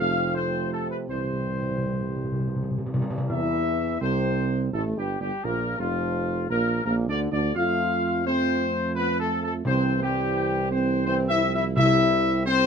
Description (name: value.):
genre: classical.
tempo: 85 BPM.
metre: 3/4.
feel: straight.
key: C major.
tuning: A4 = 440 Hz.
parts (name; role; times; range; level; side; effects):
mellow trumpet section; melody; 0.0-12.7 s; F4 to F5; -26 LUFS; left 4 dB; none.
mellow French horn section; sustained chords; 0.0-12.7 s; F3 to F4; -29 LUFS; left 1 dB; none.
warm trombone section; sustained chords; 0.0-12.7 s; F2 to C4; -32 LUFS; right 3 dB; none.
mellow tuba; bass; 0.0-12.7 s; F1 to F2; -28 LUFS; right 5 dB; none.
timpani; percussion; 1.1-4.3, 9.7-12.7 s; C3; -28 LUFS; equal; none.
room: light reverb.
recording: close, detailed microphones.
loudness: -22 LUFS.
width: side -6 dB against mid.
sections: 0.0-3.3 A section; 3.3-12.7 B section.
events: timpani fill 1.1-3.3.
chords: 0.0 F; 1.1 C; 5.4 Bb; 7.6 F; 9.7 C.